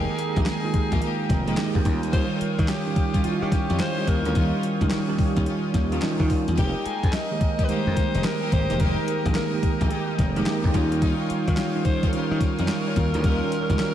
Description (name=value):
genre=R&B, new jack swing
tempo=108 BPM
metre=4/4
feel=swing 64% on 16ths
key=unclear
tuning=A4 = 445 Hz
part: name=growling alto saxophone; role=melody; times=0.0-13.9 s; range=Eb4 to Eb5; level=-31 LUFS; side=left 1 dB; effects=analog delay
part: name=bell-like tine electric piano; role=accompaniment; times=0.0-13.9 s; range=Eb3 to Ab4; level=-26 LUFS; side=right 3 dB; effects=ensemble chorus
part: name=lush unison pad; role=sustained chords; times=0.0-13.9 s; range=Bb4 to Eb6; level=-34 LUFS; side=equal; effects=chorus
part: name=bright studio string section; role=stabs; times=0.0-13.5 s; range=G3 to G4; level=-33 LUFS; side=left 2 dB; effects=none
part: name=slap bass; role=bass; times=0.0-13.8 s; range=E1 to Eb3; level=-26 LUFS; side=left 1 dB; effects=none
part: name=crisp 8-bit digital drum machine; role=drums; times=0.2-13.9 s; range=handclaps, hi-hat, kick drum, snare drum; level=-24 LUFS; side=left 1 dB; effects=overdrive
room=moderate lush hall reverb, RT60 2.6 s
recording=dreamy mix soaked in reverb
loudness=-21 LUFS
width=side -11 dB against mid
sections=0.0-13.9 A section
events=none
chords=0.0 Fm11; 1.9 Eb9; 6.6 Fm11; 10.7 Eb9